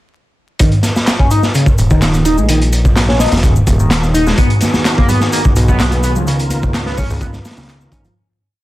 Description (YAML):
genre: breakbeat, breaks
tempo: 127 BPM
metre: 4/4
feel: straight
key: Eb minor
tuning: A4 = 440 Hz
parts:
  - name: overdriven synth lead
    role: riff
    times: 0.6-8.1 s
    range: Db3 to Eb4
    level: -17 LUFS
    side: equal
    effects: analog chorus, cassette tape, ping-pong delay
  - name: crunchy breakbeat drum kit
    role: drums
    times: 0.6-8.2 s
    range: hi-hat, kick drum, snare drum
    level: -13 LUFS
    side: equal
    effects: none
  - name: electronic shaker and handclaps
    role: drums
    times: 0.6-8.1 s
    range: none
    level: -24 LUFS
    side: left 1 dB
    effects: none
  - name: fat analog bass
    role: bass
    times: 1.8-8.1 s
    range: Eb1 to Db2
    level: -16 LUFS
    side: equal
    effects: none
  - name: percussive tonewheel organ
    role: sustained chords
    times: 4.4-8.1 s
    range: D#3 to Bb4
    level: -22 LUFS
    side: equal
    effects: chorus vibrato, slow rotary speaker, sidechain pumping
  - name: congas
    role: percussion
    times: 4.6-7.4 s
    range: none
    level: -26 LUFS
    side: right 2 dB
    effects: none
room: light reverb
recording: dense, heavily limited modern master, vinyl crackle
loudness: -10 LUFS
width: side -16 dB against mid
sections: 0.6-8.2 drop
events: drop 0.6-8.2; fade-out 5.6-8.2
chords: 0.6 Eb5; 4.4 B6; 6.3 Db13